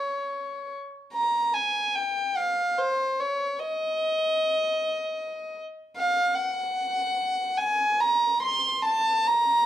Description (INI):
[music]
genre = classical, free, expressive piece for unaccompanied violin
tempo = 73 BPM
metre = 3/4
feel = rubato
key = unclear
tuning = A4 = 444 Hz
[part]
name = rich violin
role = solo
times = 0.0-9.7 s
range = C5 to C6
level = -23 LUFS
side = equal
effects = none
[sound]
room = moderate large studio reverb, RT60 1.3 s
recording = dark, warm production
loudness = -23 LUFS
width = side -12 dB against mid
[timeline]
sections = 0.0-9.7 A section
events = none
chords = none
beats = 0.30 | 1.14 1.98 2.79 | 3.60 4.42 5.22 | 5.98 6.77 7.59 | 8.44 9.26